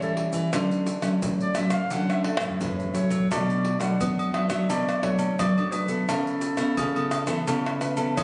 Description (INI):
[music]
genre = samba and choro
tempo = 86 BPM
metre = 4/4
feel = straight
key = unclear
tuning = A4 = 445 Hz
[part]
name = mellow clarinet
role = melody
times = 0.0-8.2 s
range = A4 to F#5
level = -33 LUFS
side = equal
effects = none
[part]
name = nylon-string guitar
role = accompaniment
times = 0.0-8.2 s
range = F#2 to A4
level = -29 LUFS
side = equal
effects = none
[part]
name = nylon-string guitar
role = bass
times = 0.0-8.2 s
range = A2 to B3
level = -32 LUFS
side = equal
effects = none
[part]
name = egg shaker, pandeiro, surdo, tamborim and agogo bells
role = percussion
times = 0.0-8.2 s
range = none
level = -32 LUFS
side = equal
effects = none
[sound]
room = moderate scoring stage reverb, RT60 1.6 s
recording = recorded on a phone in the room, club reverb, compression, nothing above 10.3 kHz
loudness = -25 LUFS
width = mono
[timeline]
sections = 0.0-3.3 A section; 3.3-8.2 B section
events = clarinet solo 0.0-3.3; drum fill 2.3-3.3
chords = 0.0 A7 (rootless); 0.5 Dmaj7; 3.3 Bm7; 6.1 Aadd9/C#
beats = | 0.53 1.23 1.92 2.61 | 3.31 4.00 4.70 5.39 | 6.08 6.78 7.47 8.17